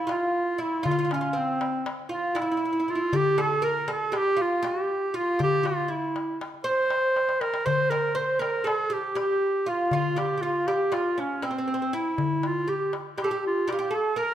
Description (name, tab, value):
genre	Turkish makam ensemble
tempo	238 BPM (eighths)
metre	9/8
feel	straight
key	C makam hicaz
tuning	A4 = 440 Hz
part	warm clarinet	melody	0.0-14.3 s	C4 to C5	-25 LUFS	right 1 dB	none
part	oud	second line	0.0-14.3 s	C4 to C5	-30 LUFS	right 1 dB	none
part	darbuka	percussion	0.1-14.2 s	none	-32 LUFS	left 6 dB	none
room	moderate recital hall reverb, RT60 1.4 s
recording	none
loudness	-24 LUFS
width	side -11 dB against mid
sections	0.0-14.3 A section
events	drum fill 7.2-7.7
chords	none